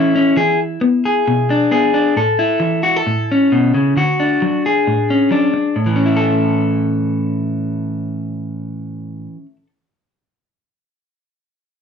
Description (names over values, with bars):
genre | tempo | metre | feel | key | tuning
highlife | 133 BPM | 4/4 | swing 54% on 16ths | A major | A4 = 440 Hz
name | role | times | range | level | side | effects
electric guitar at the edge of break-up | accompaniment | 0.0-9.7 s | A2 to A4 | -14 LUFS | left 1 dB | none
room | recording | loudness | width
wet small room reverb, RT60 0.5 s | none | -14 LUFS | side -7 dB against mid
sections
0.0-5.8 A section; 5.8-9.4 B section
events
none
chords
0.4 E7; 2.2 Aadd9; 4.0 Dmaj7; 5.8 A